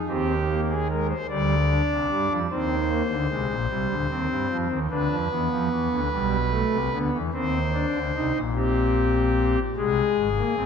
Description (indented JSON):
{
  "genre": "classical, baroque-style 3-part fugue for pipe organ",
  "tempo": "50 BPM (dotted quarters)",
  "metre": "12/8",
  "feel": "straight",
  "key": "unclear",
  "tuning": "A4 = 439 Hz",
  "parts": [
    { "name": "pipe organ, foundations", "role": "solo", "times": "0.1-10.7 s", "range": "G1 to D5", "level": "-22 LUFS", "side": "equal", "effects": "none" }
  ],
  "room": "wet scoring stage reverb, RT60 1.9 s",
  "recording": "none",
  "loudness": "-22 LUFS",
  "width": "side -6 dB against mid",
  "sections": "0.0-10.7 A section",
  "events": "none",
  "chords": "0.1 Cm/Eb; 2.5 Cm; 4.9 Bdim/D; 7.3 Cm; 9.8 Fm (rootless)"
}